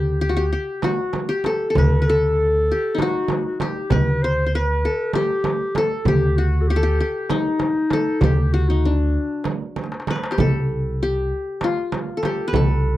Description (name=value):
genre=Turkish makam ensemble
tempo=195 BPM (eighths)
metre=7/8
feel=straight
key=D makam hicaz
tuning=A4 = 439 Hz
part: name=qanun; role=melody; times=0.0-13.0 s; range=D4 to C5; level=-23 LUFS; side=left 2 dB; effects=none
part: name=upright bass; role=bass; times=0.0-13.0 s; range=C2 to D2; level=-20 LUFS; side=equal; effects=none
part: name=darbuka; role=percussion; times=0.2-12.7 s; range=none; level=-25 LUFS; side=left 1 dB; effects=none
part: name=frame drum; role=percussion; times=0.8-12.7 s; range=none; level=-25 LUFS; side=right 6 dB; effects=none
part: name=clear clarinet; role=second line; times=1.8-9.8 s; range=D4 to C5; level=-24 LUFS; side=left 1 dB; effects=slapback echo
room=light reverb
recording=dry, close 1970s-style studio recording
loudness=-18 LUFS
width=side -15 dB against mid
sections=0.0-10.4 A section; 10.4-13.0 B section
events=drum fill 9.8-10.4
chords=none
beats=0.20 0.51 0.82 1.13 1.44 | 1.75 2.06 2.36 2.67 2.98 3.29 3.60 | 3.91 4.22 4.53 4.83 5.14 5.45 5.76 | 6.07 6.38 6.68 6.99 7.30 7.61 7.92 | 8.22 8.53 8.84 9.15 9.45 9.76 10.07 | 10.38 10.68 10.99 11.30 11.61 11.91 12.22 | 12.53 12.84